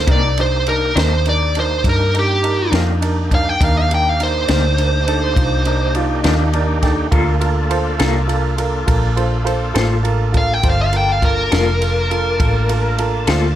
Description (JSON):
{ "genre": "slow blues", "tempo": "68 BPM (dotted quarters)", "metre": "12/8", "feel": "straight", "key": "G minor", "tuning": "A4 = 438 Hz", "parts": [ { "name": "biting lead guitar", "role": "melody", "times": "0.0-13.0 s", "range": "G4 to G5", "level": "-18 LUFS", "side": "equal", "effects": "overdrive, plate reverb" }, { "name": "overdriven tonewheel organ", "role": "sustained chords", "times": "0.0-13.6 s", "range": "Bb3 to A5", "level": "-26 LUFS", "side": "left 1 dB", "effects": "slow rotary speaker, chorus vibrato" }, { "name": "vintage muted fingered electric bass", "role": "bass", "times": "0.0-13.6 s", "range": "F1 to G2", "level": "-18 LUFS", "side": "equal", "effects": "none" }, { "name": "electric guitar through a small old amp", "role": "accompaniment", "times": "0.1-13.5 s", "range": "C3 to A4", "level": "-22 LUFS", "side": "left 4 dB", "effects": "tremolo" }, { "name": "warm upright piano", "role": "accompaniment", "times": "0.1-13.5 s", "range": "D4 to G5", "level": "-23 LUFS", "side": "right 3 dB", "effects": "none" }, { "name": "compact cocktail drum kit", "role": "drums", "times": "0.1-13.4 s", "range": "kick drum, ride cymbal, snare drum", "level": "-22 LUFS", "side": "equal", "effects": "none" } ], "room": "light reverb", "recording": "none", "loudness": "-14 LUFS", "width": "side -12 dB against mid", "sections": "0.0-13.6 A section", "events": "lead electric guitar solo 0.0-13.6; upright piano fill 6.2-7.1", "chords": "0.1 Cm9; 7.1 Gm9" }